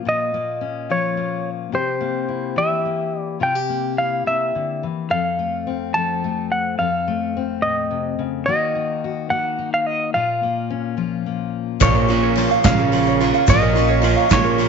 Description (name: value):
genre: indie folk with a building arrangement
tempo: 71 BPM (dotted quarters)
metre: 6/8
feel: straight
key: Bb harmonic minor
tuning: A4 = 439 Hz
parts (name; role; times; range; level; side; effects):
- semi-hollow electric guitar; melody; 0.0-14.7 s; C5 to A5; -22 LUFS; equal; harmonic tremolo
- fingerpicked steel-string acoustic guitar; accompaniment; 0.0-13.5 s; F2 to A4; -25 LUFS; left 10 dB; none
- clear cello; second line; 11.8-14.7 s; Bb2 to Db3; -21 LUFS; right 13 dB; none
- bright grand piano; accompaniment; 11.8-14.7 s; Bb1 to Db5; -30 LUFS; left 10 dB; none
- picked steel-string acoustic guitar; accompaniment; 11.8-14.7 s; Bb2 to F4; -23 LUFS; left 12 dB; none
- brassy analog pad; sustained chords; 11.8-14.7 s; Bb4 to Db6; -26 LUFS; left 12 dB; chorus
- ukulele; arpeggios; 11.8-14.7 s; F4 to F5; -21 LUFS; right 11 dB; none
- upright bass; bass; 11.8-14.7 s; Bb1; -22 LUFS; equal; none
- soft brush drum kit; drums; 11.8-14.7 s; kick drum, ride cymbal, snare drum; -20 LUFS; right 4 dB; none
- egg shaker; percussion; 11.8-14.4 s; none; -37 LUFS; right 18 dB; none
- group handclap; percussion; 11.8-14.5 s; none; -28 LUFS; left 17 dB; none
room: light reverb, studio reverb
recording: 1960s-style stereo with parts hard left and right, nothing above 7.6 kHz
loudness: -18 LUFS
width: side -6 dB against mid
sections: 0.0-11.8 A section; 11.8-14.7 B section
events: none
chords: 0.0 Bbm; 1.7 C7; 5.1 F; 8.5 Ebm; 10.1 Bbm